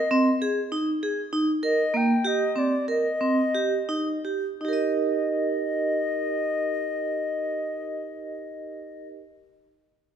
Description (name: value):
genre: contemporary instrumental, chamber music in an uneven meter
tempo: 161-198 BPM (eighths)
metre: 5/8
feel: straight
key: Eb major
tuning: A4 = 439 Hz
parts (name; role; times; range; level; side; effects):
- bright wooden flute; melody; 0.0-9.1 s; D5 to G5; -28 LUFS; left 3 dB; none
- vibraphone with hard mallets; arpeggios; 0.1-9.2 s; Bb3 to Eb5; -25 LUFS; right 3 dB; none
room: wet recital hall reverb, RT60 1.8 s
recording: none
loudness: -23 LUFS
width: side -8 dB against mid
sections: 0.0-4.6 A section; 4.6-8.3 B section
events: slowing down 1.3-4.6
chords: 0.0 Bb9sus4 (rootless); 1.3 Eb6; 2.9 Cm7; 4.6 Eb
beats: 0.10 0.41 0.71 1.01 | 1.31 1.62 1.93 2.24 2.55 | 2.87 3.20 3.54 3.88 4.24 | 4.60 4.96 5.33 5.71 6.08 | 6.45 6.83 7.20 7.57 7.95